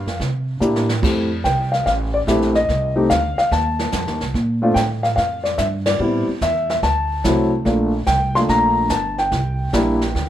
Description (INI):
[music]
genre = jazz piano trio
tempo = 145 BPM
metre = 4/4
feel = swing 67% on 8ths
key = F major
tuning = A4 = 439 Hz
[part]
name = dark grand piano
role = melody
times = 0.0-10.3 s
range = F#3 to C6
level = -18 LUFS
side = left 1 dB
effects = plate reverb
[part]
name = upright bass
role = bass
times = 0.0-10.3 s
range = G1 to C3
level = -23 LUFS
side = right 1 dB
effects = none
[part]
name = jazz brush drum kit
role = drums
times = 0.1-10.3 s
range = brushed snare drum, crash cymbal, hi-hat, kick drum, ride cymbal, snare drum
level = -26 LUFS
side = right 2 dB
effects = none
[sound]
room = light reverb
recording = none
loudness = -16 LUFS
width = side -11 dB against mid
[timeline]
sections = 0.0-1.0 A section; 1.0-10.3 B section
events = drum fill 0.6-1.0; band accent 5.8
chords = 0.2 C13; 1.0 Fmaj7; 2.7 F7; 4.3 Bbmaj7; 6.0 Am7; 6.8 D7; 7.7 Gm7; 9.3 C7